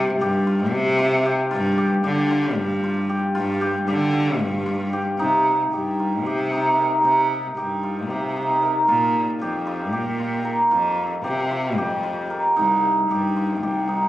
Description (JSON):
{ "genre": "contemporary instrumental, chamber music in an uneven meter", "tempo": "228 BPM (eighths)", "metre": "7/8", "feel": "straight", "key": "C minor from 5.2 s", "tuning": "A4 = 442 Hz", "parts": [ { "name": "cimbalom", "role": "arpeggios", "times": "0.0-14.1 s", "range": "Eb4 to Bb4", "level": "-21 LUFS", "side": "equal", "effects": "none" }, { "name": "rich cello", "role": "bass", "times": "0.0-14.1 s", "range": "C2 to D3", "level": "-23 LUFS", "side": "equal", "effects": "none" } ], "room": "wet recital hall reverb, RT60 1.6 s", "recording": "recorded on a phone in the room, club reverb, compression", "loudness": "-19 LUFS", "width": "side -14 dB against mid", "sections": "0.0-5.2 A section; 5.2-14.1 B section", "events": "none", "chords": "0.0 C5; 1.5 G5; 5.2 Cm7; 8.9 Bb5; 10.7 F5; 12.6 Cm7" }